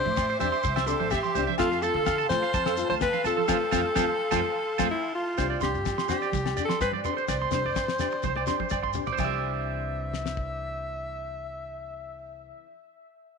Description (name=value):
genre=highlife guitar band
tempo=126 BPM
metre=4/4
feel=straight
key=C major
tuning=A4 = 440 Hz
part: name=clear alto saxophone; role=melody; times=0.0-12.5 s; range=E4 to E5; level=-30 LUFS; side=left 2 dB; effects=tape echo
part: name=nylon-string guitar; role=accompaniment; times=0.0-12.7 s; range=E3 to G4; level=-36 LUFS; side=left 13 dB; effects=none
part: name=musette accordion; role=sustained chords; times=0.0-5.3 s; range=E5 to D6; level=-38 LUFS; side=right 5 dB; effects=none
part: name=upright bass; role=bass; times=0.1-12.5 s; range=A1 to D3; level=-35 LUFS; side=equal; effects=none
part: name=congas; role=percussion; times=0.1-9.4 s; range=none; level=-37 LUFS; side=right 13 dB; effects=none
part: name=electric guitar at the edge of break-up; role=arpeggios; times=0.2-12.6 s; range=A4 to C6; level=-30 LUFS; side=right 12 dB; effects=spring reverb, tape echo
part: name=damped 70s drum kit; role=drums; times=0.2-10.5 s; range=crash cymbal, kick drum, snare drum, toms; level=-33 LUFS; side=left 5 dB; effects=none
part: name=agogo bells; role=percussion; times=0.2-9.3 s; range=none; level=-37 LUFS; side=left 11 dB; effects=none
part: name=shekere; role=percussion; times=0.2-9.4 s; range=none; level=-38 LUFS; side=left 4 dB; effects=none
room=light reverb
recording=1960s-style stereo with parts hard left and right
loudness=-24 LUFS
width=side -5 dB against mid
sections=0.0-5.4 A section; 5.4-9.2 B section; 9.2-13.0 C section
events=band accent 3.5-5.4; drum fill 5.1, 8.2-9.2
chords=0.0 Cadd9; 1.6 F; 5.4 Csus2; 9.2 Cadd9